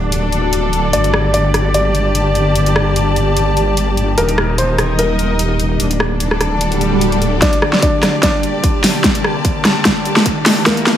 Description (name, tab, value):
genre	heavy wobble dubstep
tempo	148 BPM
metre	4/4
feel	swing 54% on 16ths, half-time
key	G harmonic minor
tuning	A4 = 443 Hz
part	evolving wavetable pad	sustained chords	0.0-11.0 s	D3 to G4	-21 LUFS	left 1 dB	chorus, built-in reverb, sidechain pumping
part	wobble bass	bass	0.0-7.4 s	D1 to G1	-17 LUFS	equal	chorus, overdrive
part	rich studio string section	texture	0.0-11.0 s	D4 to A5	-20 LUFS	left 1 dB	sidechain pumping
part	dubstep drum kit	drums	0.1-11.0 s	hi-hat, rim click, snare drum	-16 LUFS	equal	studio reverb
part	dark grand piano	melody	0.9-11.0 s	Bb3 to D5	-19 LUFS	left 1 dB	low-pass filter, dub echo
part	swell and riser	sound effects	6.7-11.0 s	none	-22 LUFS	right 3 dB	none
part	electronic kick drum	drums	7.4-10.8 s	none	-18 LUFS	equal	overdrive, studio reverb
room	moderate lush hall reverb, RT60 1.8 s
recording	high-pass filter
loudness	-12 LUFS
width	side -10 dB against mid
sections	0.0-7.4 A section; 7.4-11.0 B section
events	filter sweep on ambient pad 0.0-7.4; swell 6.7-7.4; build-up 7.4-11.0; drum fill 7.4-11.0; riser 7.4-11.0; filter sweep on grand piano 7.4-11.0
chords	0.0 D; 0.9 Gm; 4.2 Eb; 5.8 D; 7.4 Gm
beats	0.12 0.53 | 0.93 1.34 1.74 2.15 | 2.56 2.96 3.37 3.77 | 4.18 4.58 4.99 5.39 | 5.80 6.20 6.61 7.01 | 7.42 7.83 8.23 8.64 | 9.04 9.45 9.85 10.26 | 10.66